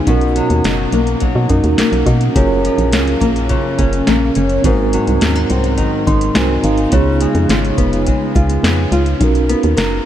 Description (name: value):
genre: indie pop, bedroom pop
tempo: 105 BPM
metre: 4/4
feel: straight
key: F# major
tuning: A4 = 436 Hz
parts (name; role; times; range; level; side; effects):
- mellow tine electric piano; accompaniment; 0.0-10.1 s; B3 to B#5; -18 LUFS; right 3 dB; medium stereo tremolo, cassette tape
- nylon-string guitar; accompaniment; 0.0-10.1 s; F#2 to A#4; -17 LUFS; left 2 dB; analog chorus, warbly pitch drift
- organ-like FM bass; bass; 0.1-10.0 s; E#1 to B2; -16 LUFS; equal; none
- soft vintage rhythm box; drums; 0.1-9.9 s; hi-hat, kick drum, snare drum; -19 LUFS; equal; none
room: moderate huge ambient reverb, RT60 8.0 s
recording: dreamy mix soaked in reverb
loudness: -12 LUFS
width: side -11 dB against mid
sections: 0.0-10.1 A section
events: tine electric piano fill 5.8-6.9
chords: 0.1 Bmaj7; 2.4 F#maj7; 4.6 G#7; 6.9 C#7; 9.2 Bmaj7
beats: | 0.07 0.64 1.22 1.79 | 2.36 2.93 3.50 4.07 | 4.64 5.21 5.78 6.36 | 6.93 7.50 8.07 8.64 | 9.21 9.78